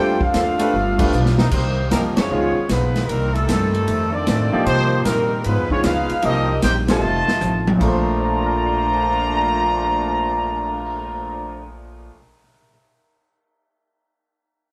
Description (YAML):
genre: jazz, big band swing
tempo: 153 BPM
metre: 4/4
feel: swing 66% on 8ths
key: Bb major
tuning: A4 = 440 Hz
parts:
  - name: warm trumpet section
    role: melody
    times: 0.0-11.7 s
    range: G3 to Bb5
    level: -24 LUFS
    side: equal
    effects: none
  - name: mellow trombone section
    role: second line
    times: 0.0-11.7 s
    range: Bb2 to G4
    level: -29 LUFS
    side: equal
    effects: none
  - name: clear baby grand piano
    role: accompaniment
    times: 0.0-12.7 s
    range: Bb2 to F7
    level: -26 LUFS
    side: equal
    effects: none
  - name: vintage hollow-body jazz guitar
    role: accompaniment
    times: 0.0-12.2 s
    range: F2 to C5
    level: -31 LUFS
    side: equal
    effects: none
  - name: upright bass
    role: bass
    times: 0.0-12.1 s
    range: F1 to C3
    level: -26 LUFS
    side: equal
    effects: none
  - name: swinging big-band drum kit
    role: drums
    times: 0.2-10.9 s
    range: crash cymbal, cymbal swell, hi-hat, kick drum, ride cymbal, snare drum, toms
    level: -26 LUFS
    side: equal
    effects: none
  - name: bright trombone section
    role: sustained chords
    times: 0.3-1.5 s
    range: Bb2 to A4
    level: -32 LUFS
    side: equal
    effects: none
room: wet studio reverb, RT60 0.9 s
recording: band playing live in one room, lossy compression artefacts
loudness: -19 LUFS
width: mono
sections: 0.0-1.5 A section; 1.5-7.8 B section; 7.8-10.9 C section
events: band accent 0.9, 2.1, 6.8; drum fill 1.1-1.5, 7.0-7.8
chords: 0.0 Bbmaj9; 0.7 G7; 1.5 Cm7; 2.3 Db9; 3.1 Cm7; 3.9 F7; 4.7 Cm7; 5.5 Db9; 6.2 Cm7; 7.0 F7; 7.8 Bbmaj9